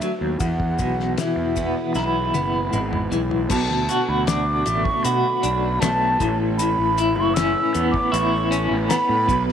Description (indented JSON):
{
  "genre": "psychedelic rock",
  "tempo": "78 BPM",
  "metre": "4/4",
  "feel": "straight",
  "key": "B dorian",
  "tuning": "A4 = 442 Hz",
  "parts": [
    { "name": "breathy mellow concert flute", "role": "melody", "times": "0.0-9.4 s", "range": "E5 to E6", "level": "-24 LUFS", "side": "right 1 dB", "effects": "tape echo" },
    { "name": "string machine, cellos", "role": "sustained chords", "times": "0.0-9.5 s", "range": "B3 to D5", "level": "-32 LUFS", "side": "right 12 dB", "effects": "ensemble chorus" },
    { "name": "clean electric guitar", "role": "riff", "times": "0.0-9.5 s", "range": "E2 to F#4", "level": "-23 LUFS", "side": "left 2 dB", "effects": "tremolo" },
    { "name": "damped 70s drum kit", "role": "drums", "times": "0.0-9.5 s", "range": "crash cymbal, hi-hat, kick drum, ride cymbal, snare drum, toms", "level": "-28 LUFS", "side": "left 3 dB", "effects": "none" },
    { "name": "maracas", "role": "percussion", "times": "0.0-9.5 s", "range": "none", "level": "-36 LUFS", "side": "left 12 dB", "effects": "none" },
    { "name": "fuzz fingered electric bass", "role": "bass", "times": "0.2-9.5 s", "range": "F#1 to B2", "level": "-25 LUFS", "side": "right 1 dB", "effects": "overdrive" }
  ],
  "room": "light reverb, small room ambience",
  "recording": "1960s-style stereo with parts hard left and right",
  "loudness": "-18 LUFS",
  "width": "side -8 dB against mid",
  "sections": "0.0-3.5 A section; 3.5-9.5 B section",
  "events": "drum fill 1.9-3.5",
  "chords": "0.4 E; 3.5 Bm7; 6.2 Aadd9",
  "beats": "| 0.40 1.18 1.95 2.72 | 3.50 4.27 5.04 5.81 | 6.58 7.36 8.13 8.90"
}